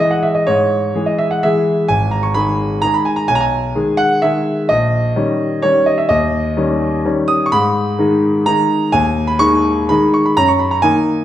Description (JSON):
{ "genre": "classical, piano waltz", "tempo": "127 BPM", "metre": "3/4", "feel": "uneven beats, rubato", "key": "G# minor", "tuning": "A4 = 440 Hz", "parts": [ { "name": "clear concert grand piano", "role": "solo", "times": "0.0-11.2 s", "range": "G#1 to D#6", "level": "-13 LUFS", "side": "equal", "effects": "none" } ], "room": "wet recital hall reverb, RT60 1.5 s", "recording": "none", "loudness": "-13 LUFS", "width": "side -12 dB against mid", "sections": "0.0-11.2 A section", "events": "none", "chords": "0.0 C#m; 1.9 G#m; 3.3 G#m/B; 4.7 D#7/A#; 7.5 G#m; 10.4 D#m/F#", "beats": "| 0.46 0.94 1.43 | 1.89 2.35 2.83 | 3.29 3.75 4.23 | 4.70 5.16 5.63 | 6.11 6.57 7.04 | 7.51 7.98 8.46 | 8.94 9.40 9.89 | 10.37 10.84" }